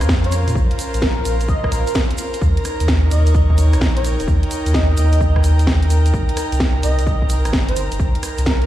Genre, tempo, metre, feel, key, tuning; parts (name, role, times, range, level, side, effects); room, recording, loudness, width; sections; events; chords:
UK garage, two-step garage; 129 BPM; 4/4; swing 66% on 16ths; A4 = 440 Hz
dark studio violin section; sustained chords; 0.0-8.7 s; F4 to Bb5; -32 LUFS; left 1 dB; sidechain pumping
saturated sub bass; bass; 0.0-8.7 s; Eb1 to Bb2; -16 LUFS; equal; sidechain pumping
house drum kit; drums; 0.0-8.7 s; hi-hat, rim click, snare drum; -24 LUFS; equal; overdrive
tube shaker; percussion; 0.0-8.6 s; -34 LUFS; right 3 dB
airy breathy pad; texture; 0.0-8.7 s; Db4 to Ab5; -26 LUFS; right 2 dB; chorus, sidechain pumping
electronic kick drum; drums; 0.1-8.6 s; -19 LUFS; equal; overdrive
airy dreamy lead; melody; 0.2-8.7 s; Bb4 to Eb5; -26 LUFS; right 1 dB; chorus, tape echo
digital ambience; played on a big sound system in a bare room, stone room reverb; -14 LUFS; side -13 dB against mid
0.0-8.7 A section
0.0 Bbm9; 2.4 Eb7; 6.1 Cm7